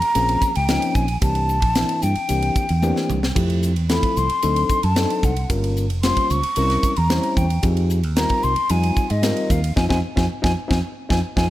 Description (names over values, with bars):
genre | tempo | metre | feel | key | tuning
electric jazz fusion | 112 BPM | 4/4 | straight | unclear | A4 = 441 Hz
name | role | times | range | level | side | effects
breathy mellow silver concert flute | melody | 0.0-11.5 s | Eb5 to Db6 | -23 LUFS | left 1 dB | none
fingered electric bass | bass | 0.0-11.5 s | F1 to Ab2 | -21 LUFS | right 1 dB | none
crisp fusion drum kit | drums | 0.0-11.5 s | crash cymbal, hi-hat, kick drum, ride cymbal, snare drum, toms | -24 LUFS | equal | none
overdriven reed electric piano | accompaniment | 0.2-11.5 s | E3 to C5 | -25 LUFS | left 2 dB | none
room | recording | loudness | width
light reverb | none | -17 LUFS | side -15 dB against mid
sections
0.0-11.5 A section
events
drum fill 2.8-3.4; band accent 9.8-11.5; reed electric piano fill 10.8-11.5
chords
0.0 Bbm7; 1.2 C9; 3.4 Fmaj9; 4.4 D7b9; 5.5 Gm7b5; 6.6 C7b9; 7.6 Fm9